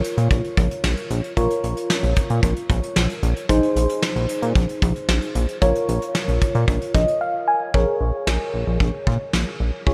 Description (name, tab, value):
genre	synth-pop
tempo	113 BPM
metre	4/4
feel	straight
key	Bb minor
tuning	A4 = 440 Hz
part	mellow FM electric piano	accompaniment	0.0-9.9 s	Eb4 to Ab5	-26 LUFS	equal	chorus, phaser
part	soft brush drum kit	drums	0.0-9.9 s	hi-hat, kick drum, snare drum	-25 LUFS	equal	none
part	chorused synth bass	bass	0.2-9.9 s	Bb1 to Bb2	-23 LUFS	equal	none
room	moderate cathedral reverb, RT60 5.0 s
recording	dreamy mix soaked in reverb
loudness	-21 LUFS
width	mono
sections	0.0-7.7 A section; 7.7-9.9 B section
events	FM electric piano fill 6.7-7.7; silent gap 7.2-7.7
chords	0.0 Bbm; 3.5 Ab/Bb; 5.6 Bbm; 7.7 Bbm7